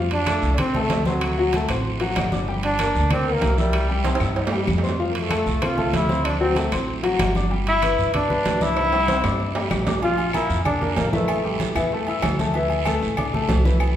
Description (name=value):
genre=latin, salsa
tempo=191 BPM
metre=4/4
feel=straight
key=unclear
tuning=A4 = 438 Hz
part: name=warm grand piano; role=accompaniment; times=0.0-13.9 s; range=E3 to E6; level=-25 LUFS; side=left 3 dB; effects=none
part: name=upright bass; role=bass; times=0.0-14.0 s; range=G1 to G2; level=-25 LUFS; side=equal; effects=none
part: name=bright trombone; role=melody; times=0.1-11.7 s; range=Gb3 to F4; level=-24 LUFS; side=equal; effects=none
part: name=congas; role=percussion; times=0.1-14.0 s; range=none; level=-28 LUFS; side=equal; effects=none
part: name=timbales and agogo bells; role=percussion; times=0.1-14.0 s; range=none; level=-28 LUFS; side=right 3 dB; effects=none
part: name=claves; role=percussion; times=0.3-14.0 s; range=none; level=-37 LUFS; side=left 7 dB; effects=none
part: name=guiro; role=percussion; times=0.3-14.0 s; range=none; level=-34 LUFS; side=right 6 dB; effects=none
room=wet recital hall reverb, RT60 1.3 s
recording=recorded in a church or concert hall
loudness=-19 LUFS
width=side -10 dB against mid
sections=0.0-10.0 A section; 10.0-14.0 B section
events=drum fill 4.0-5.0, 8.8-10.0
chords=0.0 F; 1.2 D7; 2.5 Gm; 3.7 C; 5.0 F; 6.3 D7; 7.5 G; 8.8 Cadd9; 10.0 Bb; 11.3 A5; 12.5 Dsus2